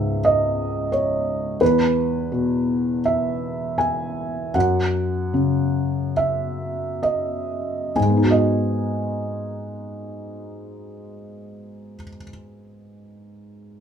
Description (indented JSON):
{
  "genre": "classical",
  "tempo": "64-89 BPM",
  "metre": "4/4",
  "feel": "rubato",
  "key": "G# minor",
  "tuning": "A4 = 438 Hz",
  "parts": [
    { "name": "felt-muted upright piano", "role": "accompaniment", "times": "0.0-13.8 s", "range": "C#2 to G#5", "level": "-20 LUFS", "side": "equal", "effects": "none" }
  ],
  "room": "light reverb",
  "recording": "minimal, uncompressed stereo recording",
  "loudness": "-19 LUFS",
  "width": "side -8 dB against mid",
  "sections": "0.0-8.0 A section; 8.0-11.7 B section",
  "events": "slowing down 0.2-8.0",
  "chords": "0.0 C#m; 1.6 E; 4.5 F#5; 8.0 G#m7"
}